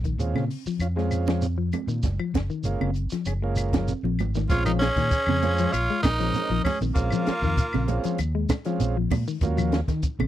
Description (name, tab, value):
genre	afrobeat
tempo	98 BPM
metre	4/4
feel	straight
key	Bb minor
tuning	A4 = 440 Hz
part	fingered electric bass	bass	0.0-10.3 s	Gb1 to Eb3	-26 LUFS	equal	none
part	compact cocktail drum kit	drums	0.0-10.2 s	hi-hat, kick drum, snare drum	-27 LUFS	equal	none
part	shekere	percussion	0.0-10.2 s	none	-33 LUFS	right 2 dB	none
part	semi-hollow electric guitar	arpeggios	0.1-10.3 s	Db3 to Ab3	-30 LUFS	left 8 dB	spring reverb
part	combo organ	accompaniment	0.2-9.8 s	Gb3 to C5	-30 LUFS	right 6 dB	none
part	congas	percussion	0.2-10.3 s	none	-31 LUFS	right 10 dB	none
part	claves	percussion	0.4-10.3 s	none	-39 LUFS	left 6 dB	none
part	growling tenor saxophone	melody	4.5-8.1 s	Bb3 to F4	-26 LUFS	right 1 dB	none
part	bright trumpet	second line	4.5-8.1 s	F4 to Db5	-33 LUFS	right 2 dB	none
room	little or no reverb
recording	dry, close 1970s-style studio recording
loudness	-22 LUFS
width	side -12 dB against mid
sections	0.0-4.5 A section; 4.5-10.3 B section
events	drum fill 3.9-4.5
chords	0.0 Bbm7; 2.0 Gbmaj7; 4.5 Bbm9; 9.4 Ebm9